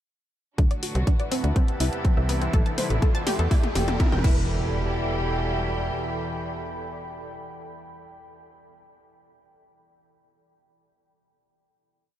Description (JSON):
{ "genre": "melodic techno", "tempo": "123 BPM", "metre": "4/4", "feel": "straight", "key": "E minor", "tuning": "A4 = 440 Hz", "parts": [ { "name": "warm studio string section", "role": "sustained chords", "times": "0.6-7.3 s", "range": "A2 to G4", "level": "-33 LUFS", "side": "right 1 dB", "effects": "sidechain pumping, low-pass filter" }, { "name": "analog pluck", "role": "arpeggios", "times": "0.6-4.7 s", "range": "B3 to A5", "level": "-33 LUFS", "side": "equal", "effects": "wide subtle chorus, sidechain pumping, ping-pong delay" }, { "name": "tight sequencer bass", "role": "bass", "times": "0.6-5.9 s", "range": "E1 to E2", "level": "-26 LUFS", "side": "equal", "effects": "sidechain pumping" }, { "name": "overtone-sweeping drone", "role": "drone", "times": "1.3-7.3 s", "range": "E2 to E3", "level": "-36 LUFS", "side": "equal", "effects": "chorus, built-in reverb, sidechain pumping" }, { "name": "electronic kick drum", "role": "drums", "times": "0.6-4.3 s", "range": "none", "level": "-21 LUFS", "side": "equal", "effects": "none" }, { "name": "house drum kit", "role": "drums", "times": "0.6-4.3 s", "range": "crash cymbal, hi-hat, toms", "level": "-32 LUFS", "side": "left 3 dB", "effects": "sidechain pumping on hats, sidechain pumping on toms, sidechain pumping on cymbals" }, { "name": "riser and impact", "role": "sound effects", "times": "1.7-7.3 s", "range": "none", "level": "-35 LUFS", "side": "equal", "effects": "none" }, { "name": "airy breathy pad", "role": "texture", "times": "0.6-7.8 s", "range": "A4 to C6", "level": "-35 LUFS", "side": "equal", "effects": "chorus, sidechain pumping" } ], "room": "digital ambience", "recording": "none", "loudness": "-22 LUFS", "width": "side -12 dB against mid", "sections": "0.6-4.5 build; 4.5-8.4 final chord", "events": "build-up 0.6-4.5; drum fill 0.6-4.5; filter sweep on synth pluck 0.6-4.5; riser 1.7-4.5", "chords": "0.6 D; 1.6 C; 2.5 Amadd9; 3.5 Em" }